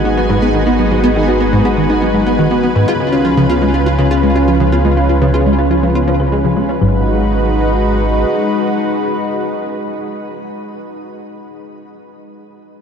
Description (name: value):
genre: ambient, sequencer-driven space music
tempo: 122 BPM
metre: 4/4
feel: straight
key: G# dorian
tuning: A4 = 439 Hz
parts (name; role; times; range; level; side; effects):
- lush unison pad; sustained chords; 0.0-11.4 s; C#3 to B4; -16 LUFS; equal; chorus, shimmer reverb
- warm sub bass; bass; 0.0-8.2 s; G#1 to C#2; -18 LUFS; equal; none
- bubbling stepped-filter texture; texture; 0.0-6.8 s; G#5; -30 LUFS; right 3 dB; chorus, built-in reverb, shimmer reverb
- thumb-piano-like synth pluck; arpeggios; 0.1-7.0 s; E#3 to B4; -20 LUFS; left 3 dB; chorus, auto-pan, ping-pong delay, shimmer reverb
- plucky analog bass; riff; 0.1-7.0 s; G#2 to E#4; -17 LUFS; equal; lush chorus, ping-pong delay, shimmer reverb
room: wet huge ambient reverb, RT60 8.8 s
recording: dark, warm production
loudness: -11 LUFS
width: side -7 dB against mid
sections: 0.0-6.8 A section; 6.8-10.7 B section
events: none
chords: 0.0 G#m7; 2.9 C#7; 6.8 G#m7